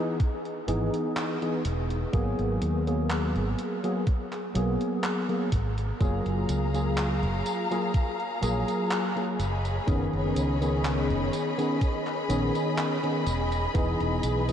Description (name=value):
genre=vaporwave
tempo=62 BPM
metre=4/4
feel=straight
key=F# major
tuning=A4 = 440 Hz
part: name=tine electric piano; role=accompaniment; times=0.0-14.5 s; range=D#3 to G#4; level=-28 LUFS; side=equal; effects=overdrive, analog chorus, vintage 12-bit sampler grit, ping-pong delay
part: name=electronic kick drum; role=drums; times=0.2-14.0 s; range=none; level=-25 LUFS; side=equal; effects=none
part: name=gated 80s digital drum machine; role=drums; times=0.2-14.5 s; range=handclaps, hi-hat, tambourine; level=-37 LUFS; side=right 1 dB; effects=gated reverb
part: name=mellow fretless electric bass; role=bass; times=0.7-14.5 s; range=E1 to D#2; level=-28 LUFS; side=equal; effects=tube saturation
part: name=warm symphonic string section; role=sustained chords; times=6.0-14.5 s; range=G#4 to B5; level=-32 LUFS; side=left 2 dB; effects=none
room=wet huge ambient reverb, RT60 8.9 s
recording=dreamy mix soaked in reverb, cassette tape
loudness=-25 LUFS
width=side -9 dB against mid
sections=0.0-14.5 A section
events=none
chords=0.0 Emaj7; 2.1 G#m9; 6.0 F#maj9; 9.4 B69/F#; 13.3 Emaj7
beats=0.20 1.17 | 2.14 3.10 4.07 5.04 | 6.01 6.97 7.94 8.91 | 9.88 10.85 11.81 12.78 | 13.75